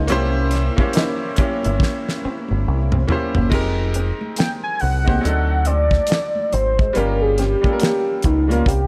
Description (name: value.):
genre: R&B, neo-soul.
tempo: 70 BPM.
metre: 4/4.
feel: swing 60% on 16ths.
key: unclear.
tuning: A4 = 444 Hz.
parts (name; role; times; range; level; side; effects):
electric guitar through a small old amp; second line; 0.0-8.6 s; Ab3 to E4; -31 LUFS; equal; tremolo.
bright upright piano; accompaniment; 0.0-8.7 s; F#3 to Db5; -26 LUFS; equal; none.
string machine, full ensemble; sustained chords; 0.0-3.5 s; Bb3 to E4; -34 LUFS; equal; phaser, ensemble chorus.
deep dub picked electric bass; bass; 0.0-8.9 s; F1 to D2; -22 LUFS; equal; none.
damped 70s drum kit; drums; 0.1-8.9 s; crash cymbal, hi-hat, kick drum, snare drum, toms; -23 LUFS; equal; none.
congas; percussion; 0.1-8.9 s; none; -37 LUFS; equal; none.
warm velvety synth lead; melody; 4.4-8.9 s; Eb4 to Ab5; -23 LUFS; equal; chorus.
room: light reverb, small room ambience.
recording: none.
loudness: -19 LUFS.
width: mono.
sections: 0.0-3.5 A section; 3.5-8.9 B section.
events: drum fill 1.8-3.5; soft synth lead solo 3.5-8.9.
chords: 0.1 C7b9; 3.5 Fm11; 5.2 D7b9; 6.9 Gm7b5.